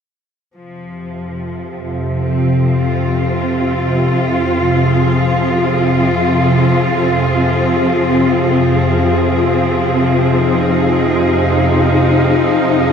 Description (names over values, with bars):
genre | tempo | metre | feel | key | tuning
dark ambient drone | free time | none | none | F minor | A4 = 440 Hz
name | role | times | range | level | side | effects
rich symphonic cello section | sustained chords | 0.5-12.9 s | F3 to Ab4 | -16 LUFS | left 1 dB | none
organ-like drone | drone | 1.2-12.9 s | F2 to C3 | -15 LUFS | equal | ensemble chorus, built-in reverb
wind-like tuned noise texture | texture | 1.3-12.9 s | F4 to F5 | -24 LUFS | equal | built-in reverb
room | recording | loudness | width
wet cathedral reverb, RT60 5.4 s | none | -12 LUFS | side -7 dB against mid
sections
0.6-12.9 A section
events
fade-in on synth texture 0.6-12.9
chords
0.6 Fm